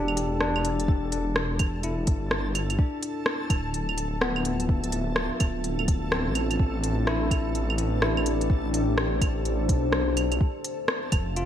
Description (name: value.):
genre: future garage.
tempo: 126 BPM.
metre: 4/4.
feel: swing 63% on 16ths.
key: unclear.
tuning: A4 = 441 Hz.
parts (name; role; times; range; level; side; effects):
bell-like tine electric piano; accompaniment; 0.0-11.5 s; B3 to G4; -32 LUFS; left 3 dB; sidechain pumping, ping-pong delay.
swelling detuned saw bass; bass; 0.0-11.5 s; D1 to B1; -28 LUFS; equal; sidechain pumping.
backwards swelling texture; texture; 0.0-11.5 s; A4 to A5; -38 LUFS; right 2 dB; built-in reverb.
organic electronic drum kit; drums; 0.1-11.5 s; claves, hi-hat, rim click; -28 LUFS; right 1 dB; studio reverb, gated reverb.
electronic kick drum; drums; 0.9-11.2 s; none; -24 LUFS; equal; studio reverb.
deep dark ambient pad; sustained chords; 4.0-11.5 s; A3 to E5; -31 LUFS; left 2 dB; chorus, built-in reverb, sidechain pumping.
room: light reverb, digital ambience.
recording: bright 1980s-style digital production, vinyl crackle.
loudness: -23 LUFS.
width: side -10 dB against mid.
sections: 0.0-11.5 A section.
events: none.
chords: 0.0 Em7; 2.8 Dm9; 6.6 Am11; 10.4 Fmaj7.